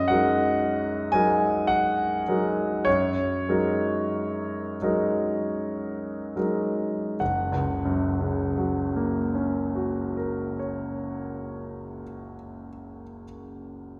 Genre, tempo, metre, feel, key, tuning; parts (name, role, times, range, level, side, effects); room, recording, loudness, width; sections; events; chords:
classical, impressionist solo piano; 33-59 BPM; 3/4; rubato; F# major; A4 = 439 Hz
bright concert grand piano; solo; 0.0-14.0 s; F#1 to G#5; -27 LUFS; equal
wet concert hall reverb, RT60 1.9 s; heard from further back in the room; -26 LUFS; mono
0.0-7.2 A section; 7.2-11.8 B section
slowing down 0.0-7.2
0.0 F#69; 7.2 F#